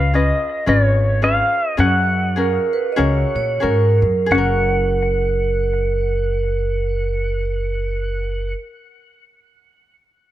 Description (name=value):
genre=Hawaiian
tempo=85-113 BPM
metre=4/4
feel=swing 59% on 8ths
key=F# major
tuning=A4 = 440 Hz
part: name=pedal steel guitar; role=melody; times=0.0-8.5 s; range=C#5 to F#5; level=-22 LUFS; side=equal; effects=ping-pong delay
part: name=ukulele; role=accompaniment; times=0.0-8.6 s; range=C#4 to B4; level=-22 LUFS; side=left 4 dB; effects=none
part: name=upright bass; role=bass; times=0.0-8.5 s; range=F#1 to A#2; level=-19 LUFS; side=equal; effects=none
part: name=vibraphone with medium mallets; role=second line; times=2.4-8.5 s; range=A#4 to D#5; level=-21 LUFS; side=right 4 dB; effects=none
room=light reverb, studio ambience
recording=none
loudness=-16 LUFS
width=side -13 dB against mid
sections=0.0-4.3 A section; 4.3-9.9 B section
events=slowing down 0.0-4.3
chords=0.0 C#7; 1.8 F#add9